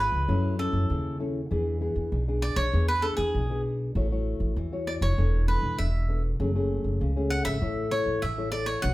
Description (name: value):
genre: samba and choro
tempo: 98 BPM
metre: 4/4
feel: straight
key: A major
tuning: A4 = 440 Hz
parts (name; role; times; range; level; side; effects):
- cavaquinho; melody; 0.0-8.9 s; G#4 to F#5; -29 LUFS; right 1 dB; none
- nylon-string guitar; accompaniment; 0.0-8.9 s; G#2 to C#5; -30 LUFS; left 2 dB; none
- upright bass; bass; 0.0-8.9 s; E1 to F#2; -27 LUFS; equal; none
room: moderate studio reverb, RT60 0.8 s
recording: band playing live in one room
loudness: -24 LUFS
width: side -17 dB against mid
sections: 0.0-8.9 A section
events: none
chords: 0.3 F#m7; 1.5 E7; 4.0 A6; 5.2 E7sus4; 6.4 F#madd9; 7.6 A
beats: 0.29 0.90 | 1.51 2.13 2.74 3.35 | 3.96 4.57 5.18 5.79 | 6.40 7.01 7.62 8.23 | 8.84